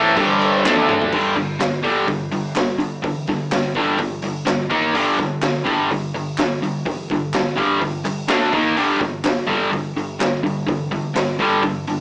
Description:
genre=garage rock duo or trio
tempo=126 BPM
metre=4/4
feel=straight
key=unclear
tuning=A4 = 441 Hz
part: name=cranked stack guitar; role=riff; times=0.0-12.0 s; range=G2 to Eb4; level=-18 LUFS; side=equal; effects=overdrive, cassette tape
part: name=raw garage drum kit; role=drums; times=0.2-12.0 s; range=crash cymbal, hi-hat, kick drum, snare drum, toms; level=-23 LUFS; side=equal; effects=cassette tape
part: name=group handclap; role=percussion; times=0.7-11.3 s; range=none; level=-28 LUFS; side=equal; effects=none
room=wet studio reverb, RT60 0.6 s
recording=home recording on cassette, small speaker sound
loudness=-17 LUFS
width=side -26 dB against mid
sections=0.0-1.1 A section; 1.1-12.0 B section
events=drum fill 0.7-1.1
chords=0.0 G5; 0.7 D5; 1.1 G5; 4.7 Eb5; 5.0 G5; 8.3 D5; 8.5 Eb5; 8.8 G5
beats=0.18 0.65 | 1.13 1.61 2.09 2.56 | 3.04 3.52 4.00 4.47 | 4.95 5.43 5.90 6.38 | 6.86 7.33 7.81 8.28 | 8.76 9.24 9.71 10.19 | 10.66 11.14 11.61

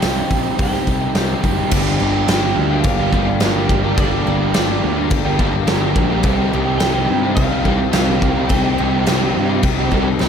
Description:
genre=rock, shoegaze and dream pop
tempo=106 BPM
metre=4/4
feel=straight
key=G minor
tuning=A4 = 441 Hz
part: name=electric guitar through a small old amp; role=melody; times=0.0-10.2 s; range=D5 to G5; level=-26 LUFS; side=right 2 dB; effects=slapback echo
part: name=airy breathy pad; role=sustained chords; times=0.0-10.3 s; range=G4 to Bb5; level=-30 LUFS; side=equal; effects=none
part: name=picked twelve-string acoustic guitar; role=arpeggios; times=0.0-10.3 s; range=F4 to Bb4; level=-30 LUFS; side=right 12 dB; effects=wide subtle chorus, slapback echo
part: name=biting overdriven guitar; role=riff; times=0.0-10.3 s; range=G2 to G4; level=-22 LUFS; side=right 10 dB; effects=reverse reverb
part: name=overdriven semi-hollow guitar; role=riff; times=0.0-10.3 s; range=G2 to G4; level=-22 LUFS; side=left 14 dB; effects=analog chorus
part: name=fuzz picked electric bass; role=bass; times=0.0-10.3 s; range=F#1 to G2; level=-21 LUFS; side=equal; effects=overdrive
part: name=huge arena drum kit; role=drums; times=0.0-10.3 s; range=crash cymbal, hi-hat, kick drum, snare drum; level=-19 LUFS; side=equal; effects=none
room=small room ambience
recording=none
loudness=-14 LUFS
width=side -7 dB against mid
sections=0.0-1.7 A section; 1.7-10.3 B section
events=none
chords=0.0 Cm7; 1.7 Gm7; 6.2 Cm7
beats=0.03 0.59 1.16 | 1.73 2.29 2.86 3.42 | 3.99 4.55 5.12 5.68 | 6.25 6.81 7.38 7.94 | 8.51 9.07 9.64 10.21

